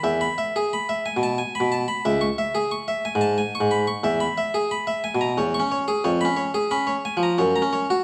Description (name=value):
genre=classical, baroque-style suite movement for harpsichord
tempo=90 BPM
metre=3/4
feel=rubato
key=unclear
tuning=A4 = 440 Hz
part: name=harpsichord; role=solo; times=0.0-8.0 s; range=C#2 to C#6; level=-23 LUFS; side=equal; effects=none
room=moderate recital hall reverb, RT60 1.6 s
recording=vinyl crackle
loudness=-23 LUFS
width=mono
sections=0.0-8.0 A section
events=none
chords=0.0 E; 2.1 C#m; 4.0 E; 5.4 C#m/E; 6.0 C#7/E#; 7.4 F#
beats=| 0.04 0.72 1.39 | 2.05 2.72 3.39 | 4.05 4.71 5.38 | 6.04 6.71 7.38